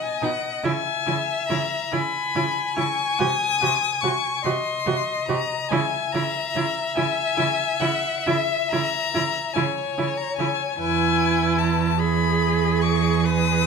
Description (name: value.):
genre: classical, slow romantic movement for string quartet.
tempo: 48 BPM (dotted quarters).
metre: 12/8.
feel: rubato.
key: unclear.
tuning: A4 = 445 Hz.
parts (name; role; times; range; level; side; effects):
rich violin; melody; 0.0-13.7 s; E5 to D#6; -25 LUFS; left 8 dB; none.
rich violin; second line; 0.0-13.7 s; G#4 to G#5; -27 LUFS; left 4 dB; none.
clear viola; accompaniment; 0.2-13.7 s; D#4 to B4; -27 LUFS; right 3 dB; none.
clear cello; bass; 0.2-13.7 s; E2 to C#3; -26 LUFS; right 6 dB; none.
room: wet large studio reverb, RT60 1.5 s.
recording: minimal, uncompressed stereo recording.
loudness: -20 LUFS.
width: side -5 dB against mid.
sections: 0.0-13.7 A section.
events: none.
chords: 0.0 B; 0.6 C#m; 3.2 G#7/B#; 5.7 C#m; 10.8 E.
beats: | 0.65 1.92 3.19 4.44 | 5.71 6.96 8.26 9.56 | 10.79 12.01 13.25.